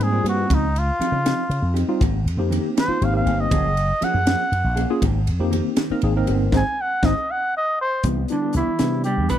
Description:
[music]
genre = electric jazz fusion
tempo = 80 BPM (dotted quarters)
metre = 6/8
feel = straight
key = Ab major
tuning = A4 = 440 Hz
[part]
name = trumpet with cup mute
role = melody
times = 0.0-9.4 s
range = D4 to Ab5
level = -23 LUFS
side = equal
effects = slapback echo
[part]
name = tine electric piano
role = accompaniment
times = 0.0-9.4 s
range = G3 to Bb4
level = -24 LUFS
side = left 1 dB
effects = medium stereo tremolo, analog chorus
[part]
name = slap bass with an envelope filter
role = bass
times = 0.0-9.4 s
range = Gb1 to Db3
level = -22 LUFS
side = equal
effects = none
[part]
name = crisp fusion drum kit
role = drums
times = 0.0-9.4 s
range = hi-hat, kick drum, ride cymbal, snare drum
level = -26 LUFS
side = equal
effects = none
[part]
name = mellow electric guitar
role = stabs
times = 0.2-9.4 s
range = Eb3 to Ab4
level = -27 LUFS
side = equal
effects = lush chorus
[part]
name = vintage hollow-body jazz guitar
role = second line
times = 8.3-9.4 s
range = D3 to B3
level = -25 LUFS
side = right 6 dB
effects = none
[sound]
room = small room ambience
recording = faint mains hum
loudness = -18 LUFS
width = side -10 dB against mid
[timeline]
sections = 0.0-8.0 A section; 8.0-9.4 B section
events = muted trumpet solo 0.0-8.0; band accent 6.5-8.0; drum fill 7.3-8.0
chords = 0.0 Abmaj9; 0.5 Dbmaj9#11; 2.0 Abmaj9; 3.5 Gbmaj9; 5.0 Abmaj9; 6.5 Ab; 7.3 N.C.; 8.0 Cmaj9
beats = | 0.51 1.26 | 2.01 2.77 | 3.52 4.27 | 5.03 5.78 | 6.53 7.29 | 8.04 8.80

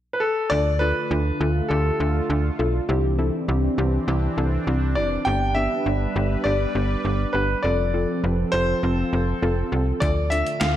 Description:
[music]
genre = synth-pop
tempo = 101 BPM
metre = 4/4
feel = straight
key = D dorian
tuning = A4 = 440 Hz
[part]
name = bright concert grand piano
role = melody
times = 0.1-10.8 s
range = A4 to G5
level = -25 LUFS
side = left 1 dB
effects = slapback echo
[part]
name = soft round pluck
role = accompaniment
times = 0.5-10.8 s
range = B3 to C5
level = -27 LUFS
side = left 1 dB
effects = chorus
[part]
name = sweeping resonant pad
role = sustained chords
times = 0.5-10.8 s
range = D3 to B4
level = -28 LUFS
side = right 1 dB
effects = chorus
[part]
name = slap-like FM bass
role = bass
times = 0.5-10.8 s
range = F1 to D2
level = -23 LUFS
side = equal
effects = none
[part]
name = gated 80s digital drum machine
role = drums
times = 10.0-10.8 s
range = hi-hat, kick drum, snare drum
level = -25 LUFS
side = equal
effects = gated reverb, gated reverb snare, overdrive
[sound]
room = moderate lush hall reverb, RT60 2.3 s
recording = dark, warm production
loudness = -20 LUFS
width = side -12 dB against mid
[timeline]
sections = 0.5-10.8 A section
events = none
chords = 0.0 N.C.; 0.5 Dm; 2.9 Cadd9; 5.3 G; 7.6 F; 10.0 Dm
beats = | 0.51 1.11 1.70 2.29 | 2.89 3.48 4.08 4.67 | 5.27 5.86 6.45 7.05 | 7.64 8.24 8.83 9.42 | 10.02 10.61

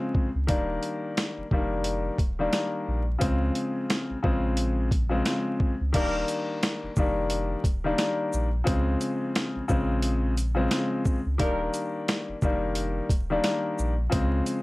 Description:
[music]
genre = hip hop, boom-bap hip-hop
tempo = 88 BPM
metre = 4/4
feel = swing 59% on 16ths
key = Eb major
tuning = A4 = 440 Hz
[part]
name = warm concert grand piano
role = accompaniment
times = 0.0-14.6 s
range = Db3 to D4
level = -27 LUFS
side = left 2 dB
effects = cassette tape, high-pass filter, low-pass filter, plate reverb
[part]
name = boom bap sampler-style drum kit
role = drums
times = 0.1-14.6 s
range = crash cymbal, hi-hat, kick drum, shaker, snare drum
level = -27 LUFS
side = equal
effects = none
[part]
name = saturated sub bass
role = bass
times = 0.4-14.4 s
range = Eb1 to Db2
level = -29 LUFS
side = equal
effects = none
[part]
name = mellow saxophone section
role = stabs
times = 6.0-6.2, 11.4-11.6 s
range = Eb4 to Bb4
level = -34 LUFS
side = right 2 dB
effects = high-pass filter, low-pass filter, slapback echo, plate reverb
[sound]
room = light reverb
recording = vinyl crackle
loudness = -24 LUFS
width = side -20 dB against mid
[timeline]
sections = 0.0-5.9 A section; 5.9-14.6 B section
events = none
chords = 0.5 Ebmaj7; 3.2 Dbmaj7; 5.9 Ebmaj7; 8.7 Dbmaj7; 11.4 Ebmaj7; 14.1 Dbmaj7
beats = | 0.49 1.17 1.85 2.53 | 3.21 3.90 4.58 5.26 | 5.94 6.62 7.30 7.99 | 8.67 9.35 10.03 10.71 | 11.40 12.08 12.76 13.44 | 14.12

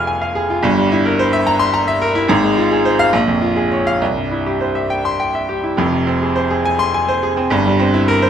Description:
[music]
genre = classical, virtuoso piano study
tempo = 66-74 BPM (dotted quarters)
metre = 6/8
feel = rubato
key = F minor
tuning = A4 = 436 Hz
[part]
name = clear baby grand piano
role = solo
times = 0.0-8.3 s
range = F1 to F6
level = -14 LUFS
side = equal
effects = none
[sound]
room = light reverb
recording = close, detailed microphones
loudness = -14 LUFS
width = side -8 dB against mid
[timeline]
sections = 0.0-8.3 A section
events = none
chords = 0.0 Fm; 0.6 C7/G; 2.3 Fm/Ab; 3.1 Bbm7; 4.0 C; 5.8 Fm; 7.5 C7/G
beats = | 0.64 1.46 | 2.29 3.13 | 4.01 4.90 | 5.78 6.65 | 7.51

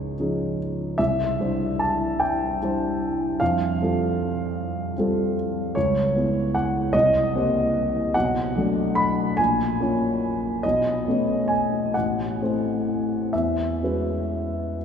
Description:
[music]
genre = classical, impressionist solo piano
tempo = 42-52 BPM (dotted quarters)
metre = 6/8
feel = rubato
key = unclear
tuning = A4 = 440 Hz
[part]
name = warm baby grand piano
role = solo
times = 0.0-14.8 s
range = A1 to B5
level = -21 LUFS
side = equal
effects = none
[sound]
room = wet cathedral reverb, RT60 6.3 s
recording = recorded in a church or concert hall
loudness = -21 LUFS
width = side -7 dB against mid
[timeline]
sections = 0.0-14.8 A section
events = none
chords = 0.0 Dbadd9; 1.0 Cadd9; 3.4 Fadd9; 5.8 C#m7; 6.9 Cm7; 8.1 Bm7; 9.4 A#m7; 10.6 B9; 11.9 Am6; 13.3 E69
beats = | 0.99 2.21 | 3.40 4.57 | 5.75 6.93 | 8.15 9.38 | 10.64 11.94 | 13.32 14.75

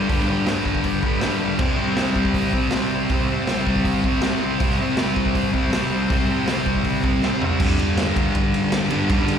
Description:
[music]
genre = garage rock duo or trio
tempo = 160 BPM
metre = 4/4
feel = straight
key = unclear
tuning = A4 = 440 Hz
[part]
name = overdriven combo organ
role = sustained chords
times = 0.0-7.6 s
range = B4 to B5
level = -32 LUFS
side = left 1 dB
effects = none
[part]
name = thick fuzz guitar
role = riff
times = 0.0-9.4 s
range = G2 to C4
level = -20 LUFS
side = equal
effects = distortion
[part]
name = raw garage drum kit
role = drums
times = 0.1-9.4 s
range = crash cymbal, hi-hat, kick drum, ride cymbal, snare drum, toms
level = -23 LUFS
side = equal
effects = none
[sound]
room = studio reverb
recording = live gig heard through the venue's PA, recital hall reverb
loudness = -18 LUFS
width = side -8 dB against mid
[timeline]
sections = 0.0-7.6 A section; 7.6-9.4 B section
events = transistor combo organ fill 0.9-1.6, 4.0-4.6; drum fill 7.2-7.6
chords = 0.0 G; 1.6 C; 7.6 G5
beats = | 0.10 0.48 0.85 1.23 | 1.60 1.98 2.35 2.73 | 3.11 3.48 3.86 4.23 | 4.61 4.98 5.36 5.73 | 6.11 6.48 6.86 7.23 | 7.61 7.98 8.36 8.73 | 9.10

